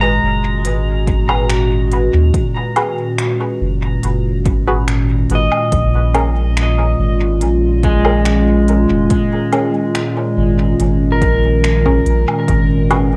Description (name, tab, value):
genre	ambient dub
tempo	71 BPM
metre	4/4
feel	straight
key	unclear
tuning	A4 = 440 Hz
part	warbly tape-like pad	sustained chords	0.0-13.2 s	A#2 to F#4	-21 LUFS	equal	chorus, built-in reverb, cassette tape
part	pedal steel guitar	arpeggios	0.0-12.9 s	G#3 to A#5	-22 LUFS	equal	vintage 12-bit sampler grit, cassette tape, tape echo
part	soft dub sub bass	bass	0.0-13.2 s	E#1 to D#2	-18 LUFS	equal	tube saturation
part	organic electronic drum kit	drums	0.6-13.1 s	finger snaps, hi-hat, woodblock	-26 LUFS	equal	cassette tape, dub echo
part	electronic kick drum	drums	1.1-12.7 s	none	-20 LUFS	equal	overdrive, cassette tape
part	filtered dub chord stab	stabs	1.3-13.2 s	C#4 to B4	-25 LUFS	equal	phaser, cassette tape, dub echo, plate reverb
room	light reverb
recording	home recording on cassette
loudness	-15 LUFS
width	mono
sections	0.0-13.2 A section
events	none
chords	0.0 G#m7; 5.7 A#m7; 12.5 G#m7